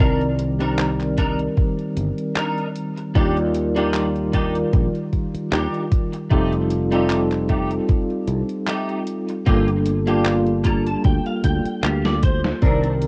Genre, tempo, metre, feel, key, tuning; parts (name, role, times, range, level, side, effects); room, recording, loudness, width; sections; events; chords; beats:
vaporwave; 76 BPM; 4/4; swing 55% on 16ths; G minor; A4 = 440 Hz
tine electric piano; accompaniment; 0.0-13.1 s; Eb3 to D5; -24 LUFS; equal; medium tremolo, subtle chorus, tape echo
clean electric guitar; riff; 0.0-12.9 s; A3 to Bb5; -30 LUFS; equal; ensemble chorus, vintage 12-bit sampler grit, low-pass filter, tape echo
sustaining fretless electric bass; bass; 0.0-13.1 s; F1 to Eb2; -26 LUFS; equal
detuned 8-bit digital drum machine; drums; 0.0-13.1 s; handclaps, hi-hat, snare drum; -30 LUFS; equal; vintage 12-bit sampler grit
electronic kick drum; drums; 0.0-12.8 s; -21 LUFS; equal; vintage 12-bit sampler grit
light reverb; rough home demo mix, cassette tape; -21 LUFS; mono
0.0-12.6 A section
clean electric guitar fill 10.3-12.6; drum fill 12.0-12.6
0.0 Cm9; 3.2 Ebmaj7; 6.3 F9; 9.5 Gm7
0.78 1.57 2.36 | 3.15 3.94 4.73 5.52 | 6.31 7.10 7.89 8.68 | 9.47 10.26 11.05 11.84 | 12.63